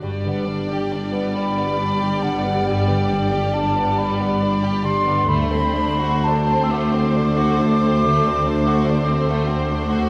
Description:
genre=classical, slow romantic movement for symphony orchestra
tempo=41-48 BPM (dotted quarters)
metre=12/8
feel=rubato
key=G major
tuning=A4 = 445 Hz
part: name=rich studio violin section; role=melody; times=0.0-10.1 s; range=C5 to D5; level=-32 LUFS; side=equal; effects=none
part: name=rich chamber violin section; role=second line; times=0.0-10.1 s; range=G3 to G4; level=-30 LUFS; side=equal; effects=none
part: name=rich chamber viola section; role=accompaniment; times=0.0-10.1 s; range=G3 to A3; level=-27 LUFS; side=equal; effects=none
part: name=concert harp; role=arpeggios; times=0.0-10.1 s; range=G2 to F#5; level=-28 LUFS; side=equal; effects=none
part: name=rich chamber cello section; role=bass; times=0.0-10.1 s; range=D2 to G2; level=-27 LUFS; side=equal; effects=none
part: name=rich chamber double bass section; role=bass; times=0.0-10.1 s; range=G1 to D2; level=-29 LUFS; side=equal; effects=none
part: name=concert flute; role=second line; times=1.4-10.1 s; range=F#5 to E6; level=-25 LUFS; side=equal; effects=none
room=wet scoring stage reverb, RT60 1.5 s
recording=heard from further back in the room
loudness=-20 LUFS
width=mono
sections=0.0-10.1 A section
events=none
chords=0.0 G; 5.3 D7

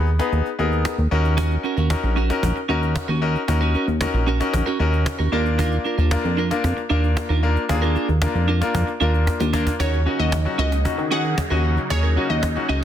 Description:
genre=dance-pop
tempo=114 BPM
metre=4/4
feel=straight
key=Eb minor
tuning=A4 = 442 Hz
part: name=bright concert grand piano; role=accompaniment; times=0.0-12.8 s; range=Bb3 to Cb5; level=-24 LUFS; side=left 4 dB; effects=none
part: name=chorused synth bass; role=bass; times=0.0-12.8 s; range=Bb1 to Eb3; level=-20 LUFS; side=equal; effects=none
part: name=cajon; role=drums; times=0.1-12.6 s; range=none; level=-28 LUFS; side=right 1 dB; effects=none
part: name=clean electric guitar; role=riff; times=1.4-12.8 s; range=Db4 to Bb4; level=-26 LUFS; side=right 6 dB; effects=wide subtle chorus
part: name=glassy wavetable pluck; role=melody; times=9.8-12.8 s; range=Db5 to Gb5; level=-27 LUFS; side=left 2 dB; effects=chorus, tape echo
part: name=filtered supersaw swell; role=sustained chords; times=9.8-12.8 s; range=Db3 to Eb4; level=-30 LUFS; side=right 2 dB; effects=phaser
room=digital ambience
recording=dense, heavily limited modern master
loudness=-18 LUFS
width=side -10 dB against mid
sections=0.0-9.8 A section; 9.8-12.8 B section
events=break 0.0-1.4; drum fill 9.3-9.8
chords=0.0 Abm/Eb; 1.1 Ebm7; 5.3 Bb/Eb; 9.8 Ebm7

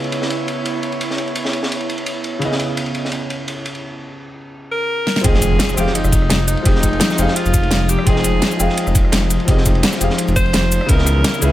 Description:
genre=liquid drum and bass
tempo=170 BPM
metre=4/4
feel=swing 53% on 16ths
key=unclear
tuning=A4 = 441 Hz
part: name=warm concert grand piano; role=accompaniment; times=0.0-11.5 s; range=Db3 to G5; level=-24 LUFS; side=left 1 dB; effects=tape echo
part: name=airy breathy pad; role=sustained chords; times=0.0-11.5 s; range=Fb3 to Db5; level=-24 LUFS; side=equal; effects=chorus, sidechain pumping
part: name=crunchy breakbeat drum kit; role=drums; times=0.0-11.5 s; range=ride cymbal, snare drum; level=-25 LUFS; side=equal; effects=high-pass filter on cymbals, high-pass filter on snare, high-pass filter on room
part: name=breathy alto saxophone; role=melody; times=4.7-11.5 s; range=Eb4 to C5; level=-22 LUFS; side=equal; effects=tape echo
part: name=pop drum kit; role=drums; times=5.1-11.5 s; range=cabasa, hi-hat, rim click, snare drum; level=-19 LUFS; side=equal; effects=none
part: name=dark detuned saw bass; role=bass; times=5.2-11.5 s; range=F1 to Db2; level=-18 LUFS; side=equal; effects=none
part: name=electronic kick drum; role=drums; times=5.2-11.0 s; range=none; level=-16 LUFS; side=equal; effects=none
part: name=impact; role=sound effects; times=5.2-6.7 s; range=none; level=-24 LUFS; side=equal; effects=none
room=light reverb, small room ambience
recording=none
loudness=-14 LUFS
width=side -14 dB against mid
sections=0.0-5.2 A section; 5.2-11.5 B section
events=filter sweep on analog synth pad 0.0-5.2; drum fill 5.1; drop 5.2-11.5; impact 5.2-6.7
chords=0.0 Dbm7; 5.2 Fm7; 10.9 Dbm7

